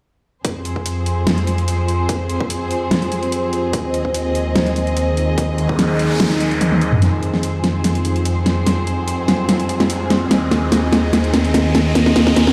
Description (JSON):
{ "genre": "heavy wobble dubstep", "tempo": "146 BPM", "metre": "4/4", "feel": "swing 53% on 16ths, half-time", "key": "F minor", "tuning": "A4 = 440 Hz", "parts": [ { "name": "rich studio string section", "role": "sustained chords", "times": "0.4-12.5 s", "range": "Eb2 to Eb5", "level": "-22 LUFS", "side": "equal", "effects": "vintage 12-bit sampler grit, sidechain pumping" }, { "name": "dubstep drum kit", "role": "drums", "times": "0.4-12.5 s", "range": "hi-hat, snare drum, toms", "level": "-19 LUFS", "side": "equal", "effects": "small room ambience" }, { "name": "electronic kick drum", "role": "drums", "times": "0.4-5.8 s", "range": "none", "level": "-26 LUFS", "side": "equal", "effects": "high-pass filter on kick, small room ambience" }, { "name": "deep dark ambient pad", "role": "texture", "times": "1.7-12.5 s", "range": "Eb4 to Bb5", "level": "-26 LUFS", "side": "equal", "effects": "chorus, built-in reverb, sidechain pumping" }, { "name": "noise sweep and riser", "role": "sound effects", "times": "5.6-12.5 s", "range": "none", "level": "-30 LUFS", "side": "equal", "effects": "none" } ], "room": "moderate lush hall reverb, RT60 1.8 s, digital ambience", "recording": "played on a big sound system in a bare room, large studio reverb", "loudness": "-18 LUFS", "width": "mono", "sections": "0.4-7.0 A section; 7.0-12.5 B section", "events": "noise sweep 5.6-7.0; drum fill 6.6-7.0, 7.0-12.5; build-up 7.0-12.5; riser 7.0-12.5", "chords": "0.4 Fm; 3.7 Ab/Eb; 7.0 Fm; 10.3 Ab/Eb", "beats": "| 0.45 0.86 1.27 1.68 | 2.09 2.50 2.91 3.32 | 3.73 4.14 4.56 4.97 | 5.38 5.79 6.20 6.61 | 7.02 7.43 7.84 8.25 | 8.66 9.08 9.49 9.90 | 10.31 10.72 11.13 11.54 | 11.95 12.36" }